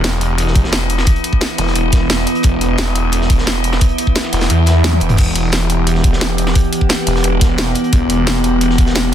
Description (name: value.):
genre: dark technical drum and bass.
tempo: 175 BPM.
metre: 4/4.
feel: straight.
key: E minor.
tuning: A4 = 440 Hz.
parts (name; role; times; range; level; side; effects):
metallic inharmonic drone; sustained chords; 0.0-9.1 s; E3 to G4; -18 LUFS; right 1 dB; chorus, built-in reverb, sidechain pumping.
snarling distorted saw bass; bass; 0.0-9.1 s; E1 to E2; -16 LUFS; equal; distortion, overdrive, sidechain pumping.
crunchy breakbeat drum kit; drums; 0.0-9.1 s; hi-hat, snare drum; -28 LUFS; equal; none.
drum and bass drum kit; drums; 0.0-9.0 s; crash cymbal, hi-hat, snare drum, toms; -19 LUFS; equal; none.
electronic kick drum; drums; 0.6-8.9 s; none; -13 LUFS; equal; none.
swell; sound effects; 4.6-5.2 s; none; -26 LUFS; left 1 dB; none.
room: light reverb.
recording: dense, heavily limited modern master.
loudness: -12 LUFS.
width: side -10 dB against mid.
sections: 0.0-9.1 A section.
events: kick drops out 4.5-5.2; swell 4.6-5.2; drum fill 4.8-5.2.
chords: 0.0 Em.